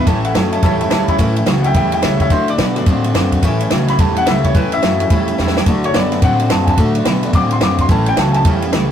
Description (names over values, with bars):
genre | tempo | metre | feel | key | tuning
rockabilly | 215 BPM | 4/4 | swing 63% on 8ths | A major | A4 = 443 Hz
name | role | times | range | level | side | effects
electric guitar through a small old amp | melody | 0.0-0.9 s | A3 | -24 LUFS | equal | none
picked steel-string acoustic guitar | accompaniment | 0.0-8.9 s | A2 to F#4 | -23 LUFS | left 1 dB | none
warm upright piano | accompaniment | 0.0-8.6 s | E3 to D6 | -19 LUFS | left 2 dB | none
electric guitar through a small old amp | riff | 0.0-8.9 s | A2 to C4 | -19 LUFS | right 1 dB | none
upright bass | bass | 0.0-8.9 s | A1 to B2 | -20 LUFS | equal | none
compact cocktail drum kit | drums | 0.1-8.8 s | kick drum, ride cymbal, snare drum | -16 LUFS | right 1 dB | none
room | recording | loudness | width
light reverb | rough rehearsal-room recording, warm saturation | -12 LUFS | side -9 dB against mid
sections
0.0-1.2 A section; 1.2-8.9 B section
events
upright piano solo 1.2-8.9; drum fill 5.4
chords
0.1 A; 2.3 D; 3.4 A; 5.7 D; 7.9 A